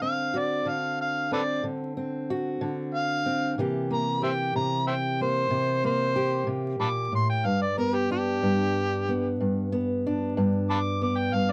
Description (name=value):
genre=acoustic country blues, solo or duo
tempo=62 BPM (dotted quarters)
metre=12/8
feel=straight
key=unclear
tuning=A4 = 440 Hz
part: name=overdriven harmonica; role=melody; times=0.0-11.5 s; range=G4 to D6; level=-29 LUFS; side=equal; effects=none
part: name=fingerpicked steel-string acoustic guitar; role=accompaniment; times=0.0-11.5 s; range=G2 to G4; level=-29 LUFS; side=equal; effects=none
room=light reverb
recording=close, detailed microphones, vinyl crackle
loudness=-27 LUFS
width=mono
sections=0.0-11.5 A section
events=harmonica solo 0.0-11.5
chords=0.0 D7; 3.6 C7; 7.5 G